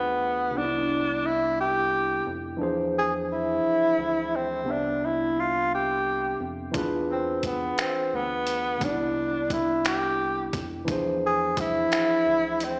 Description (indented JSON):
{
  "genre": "slow six-eight R&B",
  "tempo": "58 BPM (dotted quarters)",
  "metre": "6/8",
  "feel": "straight",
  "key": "C major",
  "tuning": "A4 = 440 Hz",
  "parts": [
    { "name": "breathy tenor saxophone", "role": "melody", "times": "0.0-12.8 s", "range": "B3 to G#4", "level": "-27 LUFS", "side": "equal", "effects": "none" },
    { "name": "barky tine electric piano", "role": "accompaniment", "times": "0.0-12.8 s", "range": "C3 to E5", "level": "-32 LUFS", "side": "equal", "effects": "none" },
    { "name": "rubbery square bass", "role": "bass", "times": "0.0-12.8 s", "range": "C2 to F2", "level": "-44 LUFS", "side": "equal", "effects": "none" },
    { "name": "dusty soul sampler-style drum kit", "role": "drums", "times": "6.7-12.8 s", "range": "finger snaps, hi-hat, kick drum", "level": "-32 LUFS", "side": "equal", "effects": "none" }
  ],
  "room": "moderate echo chamber reverb, RT60 1.6 s, digital ambience",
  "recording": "played on a big sound system in a bare room, large studio reverb, small speaker sound",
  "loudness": "-26 LUFS",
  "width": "mono",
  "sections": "0.0-12.8 A section",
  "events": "none",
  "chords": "0.0 E7b9; 0.5 Cmaj9; 2.6 E7b9b13; 4.7 Cmaj9; 6.7 E7b9; 8.8 Cmaj9; 10.9 E7b9b13"
}